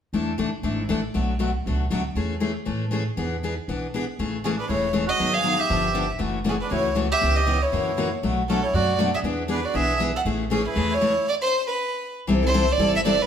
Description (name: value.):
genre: acoustic string swing (jazz manouche).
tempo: 237 BPM.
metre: 4/4.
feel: swing 56% on 8ths.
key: A major.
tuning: A4 = 440 Hz.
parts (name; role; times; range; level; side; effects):
picked steel-string acoustic guitar; accompaniment; 0.1-13.2 s; B2 to A4; -24 LUFS; left 3 dB; none.
upright bass; bass; 0.1-13.2 s; E1 to A2; -28 LUFS; right 1 dB; none.
warm violin; melody; 4.4-13.3 s; G#4 to F#5; -24 LUFS; right 1 dB; none.
melodica; second line; 4.5-11.3 s; C#4 to A4; -30 LUFS; right 5 dB; none.
room: wet stone room reverb, RT60 1.0 s.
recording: band playing live in one room.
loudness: -21 LUFS.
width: side -8 dB against mid.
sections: 0.1-4.2 A section; 4.2-12.3 B section.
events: stop 11.3-12.3.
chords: 0.1 E7sus4; 1.1 Bm9; 2.2 Amaj7/E; 3.2 E7; 4.2 Amaj7; 5.2 G#m7; 5.7 G6; 6.2 F#m7; 7.2 C#m7b5; 7.7 F#7; 8.2 Bm7; 9.2 E7; 10.3 Amaj7; 11.3 N.C.; 12.3 C69.